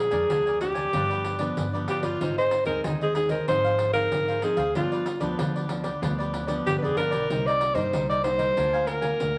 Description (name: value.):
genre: samba and choro.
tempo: 94 BPM.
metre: 4/4.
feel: straight.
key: unclear.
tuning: A4 = 440 Hz.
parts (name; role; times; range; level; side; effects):
breathy alto saxophone; melody; 0.0-9.4 s; F4 to D5; -27 LUFS; equal; none.
nylon-string guitar; accompaniment; 0.0-9.4 s; F2 to F4; -35 LUFS; equal; none.
upright bass; bass; 0.0-9.4 s; F1 to G2; -37 LUFS; equal; none.
cavaquinho; accompaniment; 0.1-9.3 s; D4 to Ab5; -35 LUFS; equal; none.
pandeiro; percussion; 0.1-9.4 s; none; -35 LUFS; equal; none.
room: wet studio reverb, RT60 0.6 s.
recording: vinyl crackle.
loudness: -25 LUFS.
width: mono.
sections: 0.0-9.4 A section.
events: none.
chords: 0.0 Bb7; 0.9 G7; 2.2 Ab; 3.5 Fm7/Ab; 4.8 G7; 7.3 Cm7; 8.6 Bb7/D.